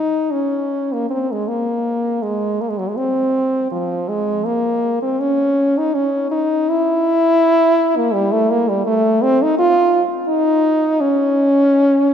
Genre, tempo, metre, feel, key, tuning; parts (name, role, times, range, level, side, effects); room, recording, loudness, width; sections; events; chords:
classical, free, expressive piece for unaccompanied French horn; 82 BPM; 3/4; uneven beats, rubato; A4 = 443 Hz
clear French horn; solo; 0.0-12.1 s; F3 to F4; -14 LUFS; equal
wet church reverb, RT60 3.3 s; -15 LUFS; side -8 dB against mid
0.0-12.1 A section